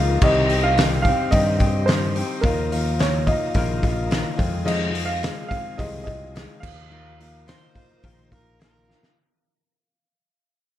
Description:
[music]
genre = folk rock and heartland rock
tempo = 108 BPM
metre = 4/4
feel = straight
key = unclear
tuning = A4 = 440 Hz
[part]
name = picked steel-string acoustic guitar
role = accompaniment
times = 0.0-9.2 s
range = F2 to G4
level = -27 LUFS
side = left 4 dB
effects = none
[part]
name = tonewheel organ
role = sustained chords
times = 0.0-9.1 s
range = F3 to C5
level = -35 LUFS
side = equal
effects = fast rotary speaker
[part]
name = fingered electric bass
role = bass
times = 0.0-8.9 s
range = Bb1 to G2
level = -24 LUFS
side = equal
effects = none
[part]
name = dark baby grand piano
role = melody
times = 0.2-8.5 s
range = Bb4 to F5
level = -26 LUFS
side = right 1 dB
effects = analog delay
[part]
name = loose indie drum kit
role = drums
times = 0.2-9.2 s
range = crash cymbal, hi-hat, kick drum, snare drum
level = -23 LUFS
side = equal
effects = none
[part]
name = overdriven slide guitar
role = second line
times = 7.5-9.0 s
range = Bb4 to C5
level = -62 LUFS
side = right 4 dB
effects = none
[sound]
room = light reverb, studio ambience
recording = dark, warm production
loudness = -19 LUFS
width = side -12 dB against mid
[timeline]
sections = 0.0-9.2 A section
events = fade-out 0.0-9.2; drum fill 8.9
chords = 0.2 Cm; 2.4 Ebsus2; 4.4 Fm7; 6.6 Ebsus2

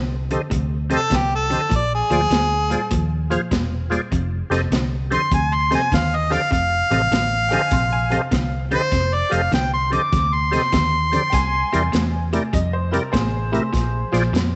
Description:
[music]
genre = electric blues shuffle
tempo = 100 BPM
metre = 4/4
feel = swing 66% on 8ths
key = unclear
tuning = A4 = 440 Hz
[part]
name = electric guitar at the edge of break-up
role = riff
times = 0.0-14.6 s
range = F2 to A3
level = -29 LUFS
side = equal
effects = none
[part]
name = vintage muted fingered electric bass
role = bass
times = 0.0-14.6 s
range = E1 to F2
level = -26 LUFS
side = equal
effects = none
[part]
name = tonewheel organ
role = accompaniment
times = 0.3-14.2 s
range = E4 to F5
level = -29 LUFS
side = equal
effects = slow rotary speaker, overdrive, chorus vibrato
[part]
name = crunchy breakbeat drum kit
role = drums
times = 0.3-14.5 s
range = hi-hat, kick drum, snare drum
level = -27 LUFS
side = equal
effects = none
[part]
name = bright harmonica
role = melody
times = 1.0-12.1 s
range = G4 to D6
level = -23 LUFS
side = equal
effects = overdrive, slapback echo
[part]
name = bright upright piano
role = second line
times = 7.5-14.3 s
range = Ab4 to C6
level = -31 LUFS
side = equal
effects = none
[sound]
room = light reverb, small room ambience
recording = nothing above 8.0 kHz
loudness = -20 LUFS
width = mono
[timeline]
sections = 0.0-14.6 A section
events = none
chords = 0.0 F7; 1.7 Bb7; 4.1 F7; 11.3 C7; 13.7 Bb7

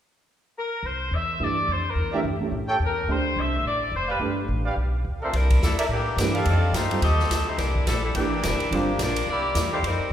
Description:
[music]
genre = jazz, big band swing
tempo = 213 BPM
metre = 4/4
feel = swing 59% on 8ths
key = C mixolydian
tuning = A4 = 440 Hz
[part]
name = bright saxophone section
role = melody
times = 0.6-10.1 s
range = E3 to E5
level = -26 LUFS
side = left 2 dB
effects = none
[part]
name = upright bass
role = bass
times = 0.8-10.1 s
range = E1 to A2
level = -26 LUFS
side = equal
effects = none
[part]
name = warm upright piano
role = accompaniment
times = 1.4-8.9 s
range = D3 to C5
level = -29 LUFS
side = right 3 dB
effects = none
[part]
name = mellow trumpet section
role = stabs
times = 2.1-6.7, 9.7-9.8 s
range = C4 to G5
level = -29 LUFS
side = right 2 dB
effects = none
[part]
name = swinging big-band drum kit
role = drums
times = 5.3-9.9 s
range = hi-hat, kick drum, ride cymbal, snare drum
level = -28 LUFS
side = equal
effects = none
[sound]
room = wet scoring stage reverb, RT60 2.0 s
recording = recorded in a church or concert hall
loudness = -22 LUFS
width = side -10 dB against mid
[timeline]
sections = 0.8-5.3 A section; 5.3-10.1 B section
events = none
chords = 0.0 N.C.; 0.8 C; 2.0 Em7b5; 2.5 A7; 3.1 Dm9; 4.2 G; 5.3 C13; 6.5 F13; 7.6 C13; 8.7 Gm7; 9.3 C13

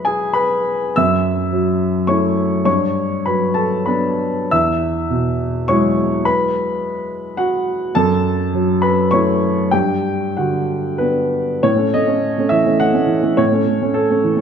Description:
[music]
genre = neoclassical minimalist piano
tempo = 90-108 BPM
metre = 3/4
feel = rubato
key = unclear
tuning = A4 = 439 Hz
[part]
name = warm baby grand piano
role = solo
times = 0.0-14.4 s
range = E2 to E6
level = -15 LUFS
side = equal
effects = none
[sound]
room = wet recital hall reverb, RT60 1.9 s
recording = recorded in a church or concert hall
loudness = -15 LUFS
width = side -7 dB against mid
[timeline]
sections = 0.0-11.6 A section; 11.6-14.4 B section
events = none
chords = 0.0 Eadd9; 0.9 F#m7; 2.7 Gmaj7; 4.5 Eadd9; 7.9 F#m7; 9.7 Gmaj7; 11.6 A

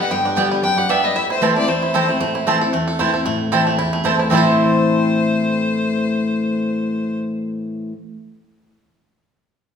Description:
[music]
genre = bluegrass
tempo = 228 BPM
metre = 4/4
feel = swing 55% on 8ths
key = A minor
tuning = A4 = 440 Hz
[part]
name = bluegrass banjo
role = melody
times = 0.0-7.9 s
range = A3 to A4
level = -24 LUFS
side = right 3 dB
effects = none
[part]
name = clear fiddle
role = melody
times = 0.0-7.2 s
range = B4 to G5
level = -22 LUFS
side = left 3 dB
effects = none
[part]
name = picked steel-string acoustic guitar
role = accompaniment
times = 0.0-7.9 s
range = E2 to G4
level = -20 LUFS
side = left 2 dB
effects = none
[part]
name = mandolin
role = stabs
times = 0.4-7.9 s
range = B3 to A5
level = -20 LUFS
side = right 3 dB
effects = none
[sound]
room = wet recital hall reverb, RT60 1.5 s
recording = recorded in a church or concert hall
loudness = -16 LUFS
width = side -7 dB against mid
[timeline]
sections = 0.0-3.3 A section; 3.3-4.3 B section; 4.3-6.4 C section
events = none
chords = 0.0 G; 1.2 Am

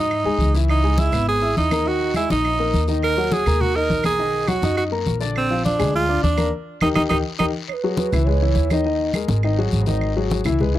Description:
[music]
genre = latin, salsa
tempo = 206 BPM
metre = 4/4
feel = straight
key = G# minor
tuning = A4 = 439 Hz
[part]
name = clear tenor saxophone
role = melody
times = 0.0-7.5 s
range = B#3 to A#4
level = -21 LUFS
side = right 3 dB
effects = tape echo
[part]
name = clear grand piano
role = accompaniment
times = 0.0-10.8 s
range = D3 to E6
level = -23 LUFS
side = left 4 dB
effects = none
[part]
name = upright bass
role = bass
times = 0.0-10.8 s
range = G#1 to G#2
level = -22 LUFS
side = equal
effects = none
[part]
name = claves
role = percussion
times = 0.1-10.6 s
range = none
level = -33 LUFS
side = right 8 dB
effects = none
[part]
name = congas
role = percussion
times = 0.1-10.8 s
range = none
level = -26 LUFS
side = left 1 dB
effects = none
[part]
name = guiro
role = percussion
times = 0.1-10.8 s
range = none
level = -36 LUFS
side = left 8 dB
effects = none
[part]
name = breathy mellow bass bansuri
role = second line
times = 7.7-8.8 s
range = B4 to C#5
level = -25 LUFS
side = right 8 dB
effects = none
[sound]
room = little or no reverb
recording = dry, close 1970s-style studio recording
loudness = -18 LUFS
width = side -13 dB against mid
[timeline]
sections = 0.0-7.7 A section; 7.7-10.8 B section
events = band accent 6.5-7.7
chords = 0.0 G#5; 0.7 C#m9; 1.9 D#sus4; 3.0 D#m; 4.2 Bmaj7; 5.4 A#7; 6.5 D#; 7.7 G#m7; 8.3 C#m7; 8.9 D#sus4; 9.4 G#5

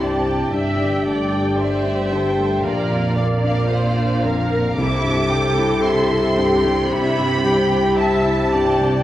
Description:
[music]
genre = cinematic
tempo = 56 BPM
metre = 4/4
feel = rubato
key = unclear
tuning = A4 = 440 Hz
[part]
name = warm symphonic violin section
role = melody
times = 0.0-9.0 s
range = E5 to D6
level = -26 LUFS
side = equal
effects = none
[part]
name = dark studio violin section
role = second line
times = 0.0-9.0 s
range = E4 to G5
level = -25 LUFS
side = right 1 dB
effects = none
[part]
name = warm grand piano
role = accompaniment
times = 0.0-9.0 s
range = Bb1 to G4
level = -23 LUFS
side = left 1 dB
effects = none
[part]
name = warm symphonic viola section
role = accompaniment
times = 0.0-9.0 s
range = G4 to E5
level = -25 LUFS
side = right 1 dB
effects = none
[part]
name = concert harp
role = arpeggios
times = 0.0-9.0 s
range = G2 to E5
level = -23 LUFS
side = left 3 dB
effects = none
[part]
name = rich symphonic cello section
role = bass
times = 0.0-9.0 s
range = G2 to C3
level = -25 LUFS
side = right 1 dB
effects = none
[part]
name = rich symphonic double bass section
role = bass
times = 0.0-9.0 s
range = G1 to C2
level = -25 LUFS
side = right 2 dB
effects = none
[sound]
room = wet recital hall reverb, RT60 1.6 s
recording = worn, warbling old tape, cassette tape, warbly pitch drift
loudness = -16 LUFS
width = side -13 dB against mid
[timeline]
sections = 0.0-9.0 A section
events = none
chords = 0.0 C; 0.5 Gsus2; 2.6 Bb; 4.8 C

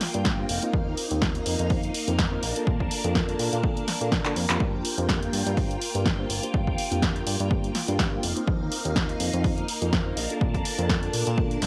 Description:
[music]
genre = filtered disco house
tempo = 124 BPM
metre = 4/4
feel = swing 55% on 16ths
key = G minor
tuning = A4 = 440 Hz
[part]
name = phased string machine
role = sustained chords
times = 0.0-11.7 s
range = Bb3 to A5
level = -34 LUFS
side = equal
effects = ensemble chorus, phaser, sidechain pumping, cassette tape
[part]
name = punchy analog drum machine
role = drums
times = 0.0-11.7 s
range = handclaps, hi-hat, snare drum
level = -31 LUFS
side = equal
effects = overdrive, sidechain pumping on hats, studio ambience, cassette tape
[part]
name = mellow reed electric piano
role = accompaniment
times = 0.1-11.6 s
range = Bb3 to C5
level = -35 LUFS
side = equal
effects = fast tremolo, phaser, sidechain pumping, cassette tape
[part]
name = fat analog bass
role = bass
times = 0.1-11.7 s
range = F1 to D3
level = -32 LUFS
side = equal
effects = tube saturation, sidechain pumping
[part]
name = electronic kick drum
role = drums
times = 0.3-11.5 s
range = none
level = -29 LUFS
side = equal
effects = overdrive, studio ambience, cassette tape
[sound]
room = light reverb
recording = home recording on cassette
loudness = -26 LUFS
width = mono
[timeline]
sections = 0.0-11.7 A section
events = drum fill 4.2-4.6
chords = 0.5 F7sus4; 2.4 Bbmaj7; 4.6 Gm7; 8.2 F7sus4; 10.2 Bbmaj7

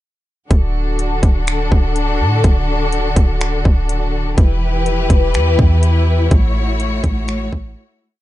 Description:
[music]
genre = hip hop, atmospheric cloud-rap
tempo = 124 BPM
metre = 4/4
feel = half-time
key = D major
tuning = A4 = 440 Hz
[part]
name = clear symphonic string section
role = sustained chords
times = 0.5-8.2 s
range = D3 to C#5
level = -20 LUFS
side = left 2 dB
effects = sidechain pumping
[part]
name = clean 808-style bass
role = bass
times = 0.5-7.8 s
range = D1 to A2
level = -16 LUFS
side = equal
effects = none
[part]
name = trap drum kit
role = drums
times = 0.5-7.6 s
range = finger snaps, hi-hat, kick drum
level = -14 LUFS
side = equal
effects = none
[sound]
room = little or no reverb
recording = dark, warm production, nothing above 10.6 kHz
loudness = -13 LUFS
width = side -15 dB against mid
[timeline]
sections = 0.5-8.2 verse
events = fade-out 6.3-8.2; break 7.8-8.2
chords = 0.5 D; 4.4 Em; 6.3 A6

